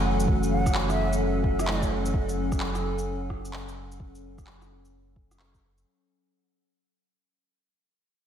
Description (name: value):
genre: future garage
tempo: 129 BPM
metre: 4/4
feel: swing 64% on 16ths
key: F# minor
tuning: A4 = 435 Hz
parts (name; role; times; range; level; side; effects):
- muted felt-like synth keys; accompaniment; 0.0-2.2 s; E3 to F#4; -32 LUFS; right 2 dB; chorus, tremolo, sidechain pumping, tape echo
- warbly tape-like pad; sustained chords; 0.0-5.9 s; F#3 to G#5; -30 LUFS; equal; chorus, built-in reverb, sidechain pumping
- warm sub bass; bass; 0.0-5.8 s; F#1; -30 LUFS; equal; sidechain pumping
- flickering grainy texture; texture; 0.0-5.9 s; F#5; -40 LUFS; right 2 dB; built-in reverb
- electronic shaker, rim click and handclaps; drums; 0.2-5.8 s; none; -34 LUFS; equal; none
- electronic kick drum; drums; 0.3-5.6 s; none; -27 LUFS; equal; none
- bright wooden flute; melody; 0.5-1.9 s; E5 to F#5; -34 LUFS; right 1 dB; ping-pong delay
room: wet lush hall reverb, RT60 2.3 s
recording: dreamy mix soaked in reverb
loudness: -24 LUFS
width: side -9 dB against mid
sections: 0.0-5.9 A section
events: fade-out 0.0-5.9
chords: 0.0 F#m7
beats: | 0.28 0.74 1.21 1.67 | 2.14 2.60 3.07 3.53 | 4.00 4.46 4.93 5.39